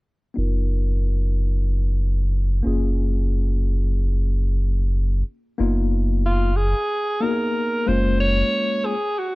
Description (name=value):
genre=hip hop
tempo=92 BPM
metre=4/4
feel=swing 63% on 16ths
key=F# major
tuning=A4 = 440 Hz
part: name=mellow tine electric piano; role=accompaniment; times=0.3-8.9 s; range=G#3 to A#4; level=-26 LUFS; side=left 2 dB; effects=medium stereo tremolo, low-pass filter
part: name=saturated sub bass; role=bass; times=0.4-8.4 s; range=F#1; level=-20 LUFS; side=equal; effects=none
part: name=breathy alto saxophone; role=melody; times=6.3-9.3 s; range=E#4 to C#5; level=-22 LUFS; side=right 1 dB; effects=slapback echo
room=studio ambience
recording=none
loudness=-19 LUFS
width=side -21 dB against mid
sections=0.4-5.6 A section; 5.6-9.3 B section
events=filter sweep on tine electric piano 0.4-5.6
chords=0.4 Bmaj7#11/F#; 2.7 F#maj9; 5.6 G#m13/F#; 7.9 F#maj9